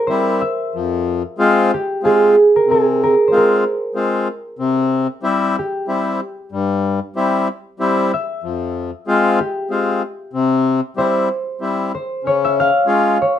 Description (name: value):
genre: klezmer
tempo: 94 BPM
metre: 3/4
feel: straight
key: C phrygian dominant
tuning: A4 = 441 Hz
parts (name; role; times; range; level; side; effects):
- concert harp; melody; 0.0-13.4 s; G4 to F5; -16 LUFS; right 2 dB; none
- accordion; accompaniment; 0.1-13.2 s; F2 to F4; -17 LUFS; left 3 dB; none
room: moderate studio reverb, RT60 0.6 s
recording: close, detailed microphones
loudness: -15 LUFS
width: side -10 dB against mid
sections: 0.0-12.2 A section; 12.2-13.4 B section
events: speeding up 0.0-13.4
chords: 0.0 C; 0.7 Fm; 4.6 C; 8.4 Fm; 10.3 C; 12.2 Db